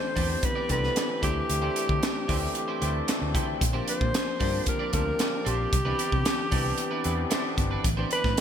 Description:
polished 1980s jazz-funk pop; 113 BPM; 4/4; straight; A4 = 440 Hz
breathy alto saxophone; melody; 0.0-8.4 s; G4 to C5; -30 LUFS; equal
overdriven tine electric piano; accompaniment; 0.0-8.4 s; E3 to A5; -32 LUFS; left 3 dB; lush chorus
electric guitar at the edge of break-up; riff; 0.0-8.3 s; D4 to D5; -35 LUFS; right 5 dB; analog chorus
vintage muted fingered electric bass; bass; 0.2-8.3 s; G1 to D3; -30 LUFS; equal
crisp fusion drum kit; drums; 0.2-8.4 s; hi-hat, kick drum, snare drum; -28 LUFS; equal; gated reverb
light reverb, small room ambience; bright 1980s-style digital production; -24 LUFS; side -8 dB against mid
0.0-8.4 A section
tine electric piano fill 2.6-3.6
0.0 Am11; 1.2 D9sus4; 3.6 Bb69; 5.7 Cmaj9; 7.8 Am11
0.43 0.96 | 1.49 2.02 2.55 3.08 | 3.61 4.14 4.67 5.20 | 5.73 6.26 6.79 7.32 | 7.85 8.38

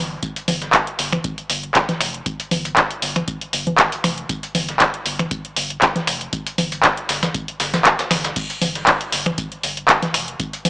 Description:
acid house; 118 BPM; 4/4; swing 54% on 16ths; A4 = 440 Hz
round analog bass; bass; 0.0-10.7 s; F1 to G1; -32 LUFS; equal; sidechain pumping
booming analog drum machine; drums; 0.2-10.7 s; congas, crash cymbal, finger snaps, handclaps, hi-hat; -17 LUFS; equal
dusty soul sampler-style drum kit; drums; 0.2-10.7 s; hi-hat, snare drum, tambourine; -26 LUFS; equal; overdrive, high-pass filter on perc, high-pass filter on hats, high-pass filter on snare, high-pass filter on room
electronic kick drum; drums; 0.2-10.5 s; -29 LUFS; equal
light reverb; dry, gritty hardware recording, small speaker sound; -17 LUFS; side -27 dB against mid
0.0-10.7 A section
| 0.23 0.73 1.24 1.75 | 2.26 2.77 3.28 3.79 | 4.29 4.80 5.31 5.82 | 6.33 6.84 7.35 7.85 | 8.36 8.87 9.38 9.89 | 10.40

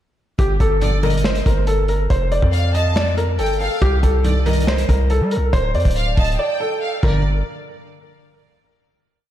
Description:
hip hop, trap; 140 BPM; 4/4; half-time; G minor; A4 = 440 Hz
felt-muted upright piano; melody; 0.4-7.2 s; G4 to Eb5; -22 LUFS; equal; ping-pong delay
hard-hitting 808-style bass; bass; 0.4-7.4 s; D1 to G3; -18 LUFS; equal
crunchy breakbeat drum kit; drums; 0.4-7.1 s; crash cymbal, finger snaps, hi-hat, kick drum, snare drum; -21 LUFS; equal
rich studio violin section; second line; 0.8-7.2 s; D5 to A5; -27 LUFS; left 1 dB; ping-pong delay
funky polysynth comp; stabs; 0.8-1.2, 4.2-7.2 s; Bb1 to Eb3; -25 LUFS; right 1 dB; chorus
moderate lush hall reverb, RT60 1.7 s; dreamy mix soaked in reverb; -16 LUFS; side -12 dB against mid
0.4-7.2 hook; 7.2-9.0 final hit
drums muted 6.4-7.2
0.4 Gm; 2.1 F69; 3.8 C5; 5.5 Dm; 7.0 Gm; 7.2 N.C.
| 0.39 0.82 1.25 1.67 | 2.10 2.53 2.96 3.39 | 3.82 4.25 4.67 5.10 | 5.53 5.96 6.39 6.82 | 7.25

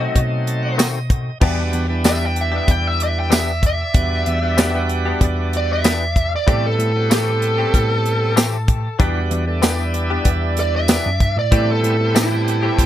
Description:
straight-eighth soul blues; 95 BPM; 4/4; straight; E minor; A4 = 443 Hz
smooth overdriven lead guitar; melody; 0.0-12.9 s; E4 to G5; -21 LUFS; right 2 dB
bright tonewheel organ; accompaniment; 0.0-12.9 s; F#3 to A5; -25 LUFS; right 4 dB; slow rotary speaker, overdrive
direct-recorded clean electric guitar; stabs; 0.0-12.8 s; D#3 to G4; -26 LUFS; left 8 dB; analog chorus, analog delay
bell-like tine electric piano; bass; 0.0-12.9 s; E2 to B2; -21 LUFS; equal
tight funk drum kit; drums; 0.2-12.9 s; crash cymbal, hi-hat, kick drum, snare drum, tambourine; -17 LUFS; equal
clear horn section; sustained chords; 1.4-12.9 s; A4 to A5; -32 LUFS; left 3 dB
little or no reverb; -16 LUFS; side -12 dB against mid
0.0-1.4 A section; 1.4-12.9 B section
tonewheel organ fill 0.2-1.4; lead electric guitar solo 1.4-12.9
0.0 B7b9; 1.4 Em7; 6.5 Am7; 9.0 Em7; 11.5 Am7
0.16 0.79 | 1.42 2.05 2.68 3.31 | 3.95 4.58 5.21 5.84 | 6.47 7.11 7.74 8.37 | 9.00 9.63 10.26 10.89 | 11.52 12.15 12.78

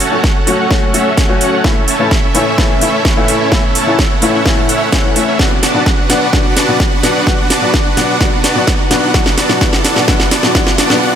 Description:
EDM, festival progressive house; 128 BPM; 4/4; straight; A4 = 440 Hz
supersaw pad; sustained chords; 0.0-11.0 s; C#4 to F#5; -20 LUFS; right 2 dB; sidechain pumping
dense compressed supersaw; riff; 0.0-11.2 s; A3 to A5; -16 LUFS; right 1 dB; sidechain pumping, low-pass filter, digital delay
house drum kit; drums; 0.0-11.0 s; hi-hat, snare drum; -16 LUFS; right 1 dB
riser and noise sweep; sound effects; 3.7-11.2 s; -26 LUFS; right 1 dB
felt-muted upright piano; accompaniment; 0.1-11.0 s; A2 to F#4; -17 LUFS; left 3 dB; sidechain pumping, digital delay
electronic kick drum; drums; 0.2-10.6 s; -14 LUFS; equal
moderate lush hall reverb, RT60 2.4 s; -10 LUFS; side -9 dB against mid
0.0-11.2 A section
build-up 0.0-11.2; drum fill 0.0-11.0
0.0 F#m; 1.6 A; 5.4 Bm
0.24 0.71 1.18 | 1.64 2.11 2.58 3.05 | 3.52 3.99 4.46 4.92 | 5.39 5.86 6.33 6.80 | 7.27 7.74 8.21 8.68 | 9.14 9.61 10.08 10.55 | 11.02

